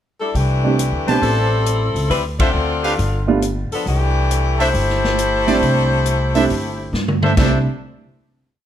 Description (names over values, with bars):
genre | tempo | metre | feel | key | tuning
jazz, big band swing | 136 BPM | 4/4 | swing 66% on 8ths | C major | A4 = 441 Hz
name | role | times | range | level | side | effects
clear saxophone section | melody | 0.2-6.9 s | E3 to D5 | -20 LUFS | left 3 dB | none
upright bass | bass | 0.3-7.6 s | G1 to G2 | -19 LUFS | equal | none
swinging big-band drum kit | drums | 0.3-7.5 s | crash cymbal, hi-hat, kick drum, ride cymbal, snare drum, toms | -22 LUFS | equal | none
dark baby grand piano | accompaniment | 0.6-7.6 s | G3 to F4 | -19 LUFS | right 6 dB | none
clear trumpet section | stabs | 1.1-7.6 s | D4 to A5 | -21 LUFS | equal | none
room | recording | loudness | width
light reverb | none | -15 LUFS | side -10 dB against mid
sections
0.0-0.3 pickup bar; 0.3-7.4 A section; 7.4-8.7 final chord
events
band accent 2.3; drum fill 6.9-7.4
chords
0.3 C69; 1.2 Am9; 2.1 Dm7; 3.0 G7; 3.9 C69